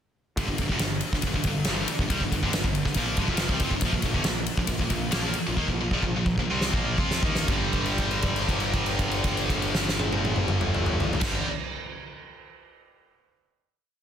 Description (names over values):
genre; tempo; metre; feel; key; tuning
hard rock; 118-140 BPM; 4/4; straight; G minor; A4 = 440 Hz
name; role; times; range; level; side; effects
heavy high-gain guitar; riff; 0.4-11.5 s; F2 to F4; -27 LUFS; equal; distortion
fuzz picked electric bass; bass; 0.4-11.4 s; F1 to F2; -31 LUFS; equal; overdrive
huge arena drum kit; drums; 0.4-11.3 s; crash cymbal, kick drum, ride cymbal, snare drum, toms; -27 LUFS; equal; none
room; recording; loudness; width
little or no reverb; dense, heavily limited modern master; -23 LUFS; side -9 dB against mid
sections
0.4-7.5 riff; 7.5-11.5 final chord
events
slowing down 3.8-7.5; drum fill 5.6-7.5; held note 7.5-11.2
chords
0.4 Gm; 3.8 Bb5; 7.5 G5